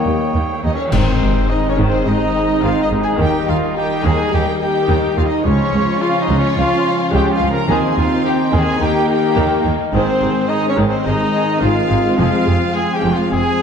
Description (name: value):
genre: cinematic, heroic adventure film score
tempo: 107 BPM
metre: 4/4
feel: straight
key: Ab major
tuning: A4 = 440 Hz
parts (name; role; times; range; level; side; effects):
- rich symphonic violin section; melody; 0.0-13.6 s; C5 to Bb5; -25 LUFS; left 3 dB; none
- mellow cor anglais; second line; 0.0-13.6 s; Ab4 to Eb5; -30 LUFS; right 4 dB; none
- mellow hollow large flute ensemble; second line; 0.0-13.6 s; C5 to Bb5; -26 LUFS; equal; none
- warm clarinet; second line; 0.0-13.6 s; C4 to C#5; -28 LUFS; right 1 dB; none
- warm symphonic violin section; second line; 0.0-13.6 s; Bb3 to C#5; -25 LUFS; left 2 dB; none
- rich symphonic viola section; accompaniment; 0.0-13.6 s; C3 to A#3; -24 LUFS; equal; none
- warm French horn section; sustained chords; 0.0-13.6 s; A#3 to Bb4; -23 LUFS; left 4 dB; none
- warm trombone section; sustained chords; 0.0-13.6 s; Eb3 to Eb4; -24 LUFS; right 2 dB; none
- concert harp; arpeggios; 0.0-13.6 s; Ab2 to Eb5; -27 LUFS; left 8 dB; none
- clear trumpet; stabs; 0.0-13.6 s; C4 to C#5; -23 LUFS; right 1 dB; none
- rich symphonic cello section; bass; 0.1-13.4 s; Db2 to Ab2; -21 LUFS; right 2 dB; none
- rich symphonic double bass section; bass; 0.1-13.4 s; F1 to D#2; -23 LUFS; right 2 dB; none
- clash cymbals and concert bass drum; percussion; 0.9-2.0 s; none; -23 LUFS; left 1 dB; none
- timpani; percussion; 0.9-1.7, 7.7-8.5 s; Ab2 to Eb3; -25 LUFS; left 2 dB; none
room: wet scoring stage reverb, RT60 1.7 s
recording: dark, warm production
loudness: -14 LUFS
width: side -7 dB against mid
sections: 0.9-13.6 A section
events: band accent 0.9-1.5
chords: 0.0 D#7; 0.9 Ab; 3.2 Eb; 5.4 Db; 7.7 Ab/Eb; 8.8 Eb; 9.9 Ab; 12.2 Fm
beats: 0.34 | 0.92 1.49 2.06 2.62 | 3.19 3.75 4.32 4.88 | 5.44 6.01 6.57 7.13 | 7.69 8.24 8.80 9.37 | 9.93 10.49 11.05 11.62 | 12.18 12.74 13.30